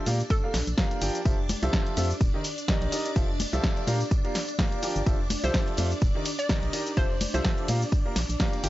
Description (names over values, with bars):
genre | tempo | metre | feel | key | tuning
piano house | 126 BPM | 4/4 | swing 56% on 16ths | F major | A4 = 440 Hz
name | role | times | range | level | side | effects
string machine, violins | sustained chords | 0.0-8.7 s | D4 to D5 | -35 LUFS | equal | ensemble chorus, sidechain pumping
clear baby grand piano | riff | 0.0-8.7 s | Eb3 to G5 | -32 LUFS | equal | sidechain pumping, tape echo
organ-like FM bass | bass | 0.1-8.7 s | Eb1 to Bb2 | -28 LUFS | equal | tube saturation, sidechain pumping
punchy analog drum machine | drums | 0.1-8.7 s | cabasa, hi-hat, ride cymbal, snare drum | -31 LUFS | equal | none
tambourine and congas | percussion | 0.1-8.7 s | none | -37 LUFS | left 3 dB | none
hollow square pluck | melody | 0.3-0.8, 5.4-7.7 s | A4 to D5 | -35 LUFS | equal | chorus, tape echo
electronic kick drum | drums | 0.3-8.5 s | none | -26 LUFS | equal | none
room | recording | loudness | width
digital ambience | dry, gritty hardware recording, nothing above 7.7 kHz | -24 LUFS | side -16 dB against mid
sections
0.0-8.7 A section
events
none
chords
0.1 Bb6; 1.3 Fmaj9; 2.2 Ebmaj7; 3.2 Fmaj9; 3.9 Bb6; 5.1 Fmaj9; 6.0 Ebmaj7; 7.0 Fmaj9; 7.7 Bb6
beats
0.30 0.78 | 1.26 1.73 2.21 2.68 | 3.16 3.64 4.11 4.59 | 5.07 5.54 6.02 6.49 | 6.97 7.45 7.92 8.40